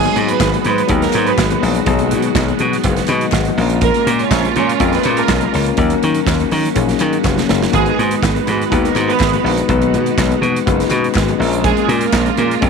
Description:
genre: disco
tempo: 123 BPM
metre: 4/4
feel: straight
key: unclear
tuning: A4 = 443 Hz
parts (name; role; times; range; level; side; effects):
- dark studio string section; second line; 0.0-12.6 s; Ab3 to Db5; -19 LUFS; right 10 dB; none
- mellow tine electric piano; accompaniment; 0.0-12.7 s; Gb3 to F#5; -18 LUFS; left 15 dB; fast stereo tremolo
- clear studio string section; sustained chords; 0.0-12.7 s; Db3 to Gb4; -23 LUFS; right 16 dB; none
- slap bass; bass; 0.0-12.7 s; F1 to Eb3; -18 LUFS; equal; none
- modern studio drum kit; drums; 0.0-12.7 s; hi-hat, kick drum, snare drum; -21 LUFS; right 3 dB; none
- congas; percussion; 0.1-12.5 s; none; -27 LUFS; left 16 dB; none
- group handclap; percussion; 0.4-12.3 s; none; -29 LUFS; left 14 dB; none
room: light reverb, studio reverb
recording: 1960s-style stereo with parts hard left and right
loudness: -13 LUFS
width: side -5 dB against mid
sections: 0.0-12.7 A section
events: drum fill 7.2-7.7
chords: 0.0 Abm7; 1.9 B6; 3.6 Bbm7; 5.8 Ebm7; 7.7 Abm7; 9.7 B6; 11.4 Bbm7

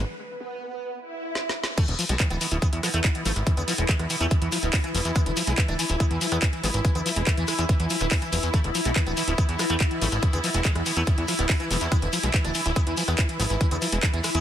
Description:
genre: psychedelic trance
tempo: 142 BPM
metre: 4/4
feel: straight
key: unclear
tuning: A4 = 440 Hz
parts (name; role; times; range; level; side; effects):
- formant-sweep wobble bass; second line; 0.0-1.0 s; B3; -37 LUFS; right 4 dB; ensemble chorus, sidechain pumping, high-pass filter, dub echo
- swarming drone; sustained chords; 0.0-14.4 s; E4; -31 LUFS; left 1 dB; built-in reverb, sidechain pumping
- fat analog bass; bass; 0.0-14.4 s; D1 to E2; -27 LUFS; equal; none
- swell; sound effects; 1.1-1.8 s; none; -33 LUFS; right 1 dB; none
- drum and bass drum kit; drums; 1.4-14.4 s; crash cymbal, handclaps, hi-hat, rim click, snare drum; -28 LUFS; equal; none
- sitar; melody; 1.8-14.4 s; B2 to D4; -32 LUFS; right 1 dB; phaser, sidechain pumping, dub echo
- overdriven acid bass; riff; 1.8-14.4 s; D3 to E4; -33 LUFS; moving between left 3 dB and right 4 dB; auto-pan, sidechain pumping, dub echo
- electronic kick drum; drums; 1.8-14.1 s; none; -23 LUFS; equal; none
- shekere; percussion; 1.8-14.4 s; none; -33 LUFS; left 5 dB; none
room: digital ambience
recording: dense, heavily limited modern master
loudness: -22 LUFS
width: side -10 dB against mid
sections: 0.0-1.8 A section; 1.8-14.4 B section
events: break 0.1-1.8; swell 1.1-1.8; drum fill 1.4-1.8; band accent 1.6; drop 1.8-14.4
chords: 0.0 N.C.; 1.8 E5

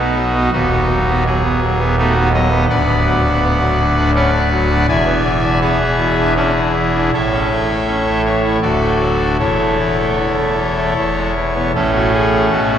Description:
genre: classical, chorale-style piece for pipe organ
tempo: 76-84 BPM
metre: 3/4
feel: rubato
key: A major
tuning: A4 = 440 Hz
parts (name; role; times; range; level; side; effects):
- pipe organ, trumpet; solo; 0.0-12.8 s; D1 to G#5; -13 LUFS; equal; none
room: wet cathedral reverb, RT60 4.8 s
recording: heard from further back in the room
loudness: -13 LUFS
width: side -9 dB against mid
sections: 0.0-11.7 A section; 11.7-12.8 B section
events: none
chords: 0.0 B; 0.5 B/D#; 2.7 Bm/D; 4.9 E7; 7.1 A; 8.6 D; 9.4 A/E; 11.0 E; 11.7 A

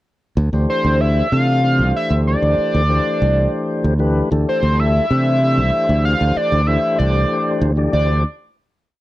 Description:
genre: electric jazz fusion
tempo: 63 BPM (dotted quarters)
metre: 6/8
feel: straight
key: unclear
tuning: A4 = 443 Hz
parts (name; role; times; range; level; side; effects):
- modern bright fingered electric bass; bass; 0.4-8.2 s; C2 to C3; -16 LUFS; equal; none
- tonewheel organ; accompaniment; 0.5-8.2 s; E3 to D5; -22 LUFS; left 2 dB; slow rotary speaker
- overdriven synth lead; melody; 0.7-8.2 s; C5 to F5; -19 LUFS; equal; distortion, chorus, slapback echo
room: little or no reverb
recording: dry, close 1970s-style studio recording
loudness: -14 LUFS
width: side -16 dB against mid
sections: 0.4-7.9 groove; 7.9-9.0 final chord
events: none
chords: 0.4 Dm9; 7.9 Dsus2

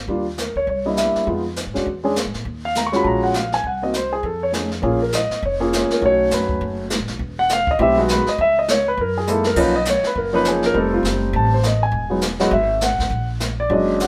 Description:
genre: jazz piano trio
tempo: 203 BPM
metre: 4/4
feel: swing 60% on 8ths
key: unclear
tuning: A4 = 440 Hz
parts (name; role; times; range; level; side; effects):
- upright bass; bass; 0.0-14.1 s; E1 to Bb2; -28 LUFS; equal; none
- warm grand piano; melody; 0.1-14.1 s; E#3 to Db6; -20 LUFS; equal; none
- jazz brush drum kit; drums; 0.1-14.1 s; brushed snare drum, crash cymbal, hi-hat, kick drum, snare drum; -29 LUFS; equal; none
room: moderate studio reverb, RT60 0.8 s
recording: band playing live in one room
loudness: -20 LUFS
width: mono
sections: 0.0-4.8 A section; 4.8-14.1 B section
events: drum fill 9.3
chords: 0.1 Ebmaj9; 0.7 C7; 1.3 Fm7b5; 1.9 E; 2.5 Ebm11; 3.6 Cdim; 4.2 F7alt; 4.8 Bbm7; 6.0 B9; 7.2 Emaj9; 8.4 Dbm; 9.0 Gb13; 9.6 Bmaj9#11; 10.7 F9; 11.9 Eadd9; 13.1 Bb7alt

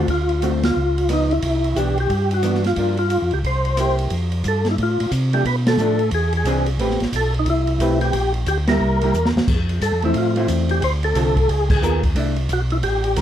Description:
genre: soul jazz organ trio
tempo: 179 BPM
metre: 4/4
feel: swing 63% on 8ths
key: C major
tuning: A4 = 440 Hz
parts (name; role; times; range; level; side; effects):
- percussive tonewheel organ; melody; 0.0-13.2 s; Eb4 to C5; -21 LUFS; equal; slow rotary speaker, overdrive, chorus vibrato, plate reverb
- hollow-body jazz guitar; accompaniment; 0.0-13.2 s; D3 to B4; -23 LUFS; equal; none
- mellow tonewheel organ; bass; 0.0-13.2 s; A1 to C3; -21 LUFS; equal; slow rotary speaker
- open jazz drum kit; drums; 0.1-13.2 s; crash cymbal, hi-hat, kick drum, ride cymbal, rim click, snare drum; -25 LUFS; right 1 dB; none
room: light reverb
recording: none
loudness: -17 LUFS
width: side -10 dB against mid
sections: 0.0-4.1 A section; 4.1-13.2 B section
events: band accent 0.6, 5.6, 8.6, 11.7; drum fill 9.1-9.5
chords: 0.1 Dm7; 0.8 Db9; 1.4 Cmaj9; 2.8 Gm7; 3.4 C7; 4.1 Fadd9; 5.5 Bm7b5; 6.1 E7b13; 6.8 Am9; 8.1 Gm; 8.8 C7; 9.5 Fmaj7; 10.8 Dm7; 11.5 Db13; 12.2 C69

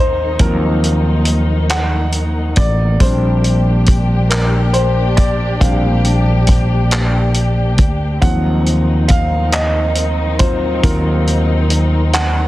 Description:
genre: slow six-eight R&B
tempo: 46 BPM (dotted quarters)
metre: 6/8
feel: straight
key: unclear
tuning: A4 = 442 Hz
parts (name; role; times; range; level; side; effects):
- warm baby grand piano; accompaniment; 0.0-12.5 s; F3 to Gb5; -19 LUFS; equal; none
- muted studio string section; sustained chords; 0.0-12.5 s; Eb3 to G4; -23 LUFS; left 2 dB; none
- fretless electric bass; bass; 0.0-12.5 s; A1 to Eb2; -15 LUFS; equal; none
- warm soul drum kit; drums; 0.4-12.3 s; handclaps, hi-hat, kick drum; -15 LUFS; equal; vintage 12-bit sampler grit
room: small room ambience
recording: dense, heavily limited modern master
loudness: -12 LUFS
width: side -16 dB against mid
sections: 0.0-12.5 A section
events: grand piano solo 0.0-12.5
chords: 0.0 Ebm6; 3.0 Bb69; 8.2 Ebm6

